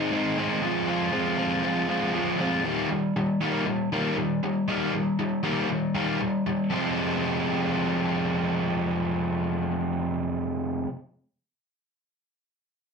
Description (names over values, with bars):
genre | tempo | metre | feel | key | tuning
rock | 118 BPM | 4/4 | straight | F minor | A4 = 439 Hz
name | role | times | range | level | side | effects
overdriven electric guitar | solo | 0.0-10.9 s | F2 to F4 | -24 LUFS | equal | slapback echo
room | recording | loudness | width
wet studio reverb, RT60 0.5 s | dense, heavily limited modern master | -24 LUFS | side -5 dB against mid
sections
0.0-2.6 A section; 2.6-6.7 B section; 6.7-10.8 C section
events
none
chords
0.0 Ab; 0.6 Fm; 2.6 Eb; 6.7 Fm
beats
0.12 | 0.62 1.13 1.63 2.14 | 2.64 3.15 3.66 4.17 | 4.67 5.18 5.69 6.20 | 6.71 7.22 7.73 8.24 | 8.76 9.27 9.78 10.29